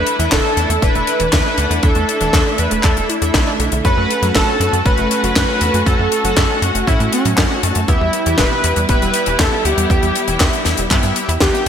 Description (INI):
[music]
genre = italo disco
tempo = 119 BPM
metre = 4/4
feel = straight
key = unclear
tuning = A4 = 437 Hz
[part]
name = wide unison lead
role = melody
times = 0.0-11.7 s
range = C#4 to B4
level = -19 LUFS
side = equal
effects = analog chorus, ping-pong delay
[part]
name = warm symphonic string section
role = sustained chords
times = 0.0-11.7 s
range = G3 to F#4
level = -23 LUFS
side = equal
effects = none
[part]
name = analog pluck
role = arpeggios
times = 0.0-11.6 s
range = B2 to E4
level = -25 LUFS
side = right 3 dB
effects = chorus, ping-pong delay
[part]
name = chorused polysynth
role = stabs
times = 0.0-11.7 s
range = B3 to A5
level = -24 LUFS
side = left 2 dB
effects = vintage 12-bit sampler grit
[part]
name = tight sequencer bass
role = bass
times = 0.0-11.7 s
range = E1 to A2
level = -20 LUFS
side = equal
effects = tube saturation
[part]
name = tight funk drum kit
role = drums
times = 0.1-11.7 s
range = handclaps, hi-hat, snare drum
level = -20 LUFS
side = left 2 dB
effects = small room ambience, gated reverb
[part]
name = electronic kick drum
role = drums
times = 0.3-11.5 s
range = none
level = -18 LUFS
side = equal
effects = small room ambience
[sound]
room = moderate lush hall reverb, RT60 2.1 s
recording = bright 1980s-style digital production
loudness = -13 LUFS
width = side -8 dB against mid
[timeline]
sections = 0.0-11.7 A section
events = drum fill 11.4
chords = 0.0 Asus4/E; 3.8 F#m; 7.9 Em